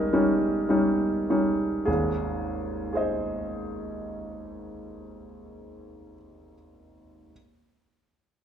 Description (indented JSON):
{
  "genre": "classical, romantic character piece for solo piano",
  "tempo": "47-58 BPM",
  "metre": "3/4",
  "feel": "rubato",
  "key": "Ab major",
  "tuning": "A4 = 444 Hz",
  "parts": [
    { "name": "clear grand piano", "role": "solo", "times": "0.0-7.3 s", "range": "Ab1 to Eb5", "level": "-25 LUFS", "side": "equal", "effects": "none" }
  ],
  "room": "wet large studio reverb, RT60 1.3 s",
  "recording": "dark, warm production",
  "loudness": "-24 LUFS",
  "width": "side -9 dB against mid",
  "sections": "0.0-1.9 A section; 1.9-5.0 B section",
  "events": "slowing down 0.0-1.9",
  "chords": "0.0 Eb7/Ab; 1.9 Ab",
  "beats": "0.68 | 1.87 2.91 3.98"
}